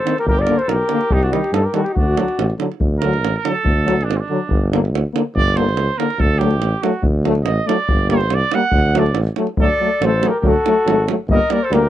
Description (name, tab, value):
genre	balkan folk, Balkan brass band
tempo	142 BPM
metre	2/4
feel	straight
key	D phrygian dominant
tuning	A4 = 440 Hz
part	dark flugelhorn	melody	0.0-2.5, 9.6-11.9 s	F#4 to Eb5	-19 LUFS	left 2 dB	none
part	warm trumpet	second line	0.0-11.9 s	C4 to F#5	-22 LUFS	right 5 dB	none
part	clear French horn	accompaniment	0.0-11.8 s	F#3 to C4	-21 LUFS	left 6 dB	none
part	clear trombone	accompaniment	0.1-11.8 s	D3 to G3	-24 LUFS	right 6 dB	none
part	davul	percussion	0.1-11.8 s	none	-21 LUFS	right 1 dB	none
part	warm tuba	bass	0.3-11.9 s	G1 to G2	-19 LUFS	equal	none
room	little or no reverb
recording	dry, close 1970s-style studio recording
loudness	-15 LUFS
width	side -12 dB against mid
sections	0.0-2.8 A section; 2.8-9.6 B section; 9.6-11.9 C section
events	trumpet solo 2.8-9.6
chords	0.3 Gm; 1.1 Cm; 2.0 D; 4.5 Gm; 6.2 D; 7.9 Gm; 8.7 D; 11.3 Gm